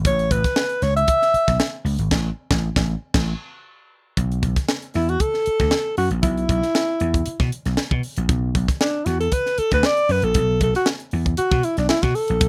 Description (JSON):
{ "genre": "funk", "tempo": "116 BPM", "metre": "4/4", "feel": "straight", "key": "B minor", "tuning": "A4 = 441 Hz", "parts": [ { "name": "vintage slap bass", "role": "bass", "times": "0.0-12.5 s", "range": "G#1 to B2", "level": "-24 LUFS", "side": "equal", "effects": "none" }, { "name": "tight funk drum kit", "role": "drums", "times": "0.0-12.5 s", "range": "crash cymbal, hi-hat, kick drum, snare drum", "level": "-25 LUFS", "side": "equal", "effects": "none" }, { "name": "breathy alto saxophone", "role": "melody", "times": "0.1-1.8, 5.0-12.5 s", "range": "D4 to E5", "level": "-22 LUFS", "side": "equal", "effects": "none" } ], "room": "little or no reverb", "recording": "rough home demo mix", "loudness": "-21 LUFS", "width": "mono", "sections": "0.0-4.2 A section; 4.2-12.5 B section", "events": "band accent 2.1-4.2; alto saxophone solo 4.2-12.5", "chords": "0.0 A; 4.2 Bsus4", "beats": "| 0.05 0.56 1.08 1.59 | 2.11 2.62 3.14 3.65 | 4.17 4.69 5.20 5.72 | 6.23 6.75 7.26 7.78 | 8.29 8.81 9.32 9.84 | 10.36 10.87 11.39 11.90 | 12.42" }